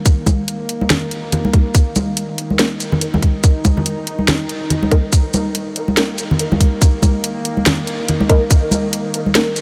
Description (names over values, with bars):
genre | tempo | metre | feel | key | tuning
deep dubstep | 142 BPM | 4/4 | swing 58% on 16ths, half-time | unclear | A4 = 441 Hz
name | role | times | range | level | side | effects
bowed-like drone | sustained chords | 0.0-9.6 s | Eb3 to Eb4 | -27 LUFS | equal | built-in reverb
soft dub sub bass | bass | 0.0-9.6 s | none | barely audible | none | none
electronic kick drum | drums | 0.1-8.6 s | none | -14 LUFS | equal | overdrive
garage drum kit | drums | 0.1-9.6 s | hi-hat, shaker, snare drum | -22 LUFS | equal | overdrive
congas | percussion | 0.3-9.3 s | none | -22 LUFS | equal | none
filtered dub chord stab | stabs | 1.5-9.5 s | Bb3 to Bb4 | -24 LUFS | equal | phaser, lush chorus, dub echo
room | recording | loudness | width
light reverb | none | -16 LUFS | mono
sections
0.0-9.6 A section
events
build-up 0.0-9.6; filter sweep on synth stab 0.0-9.6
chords
0.0 Eb5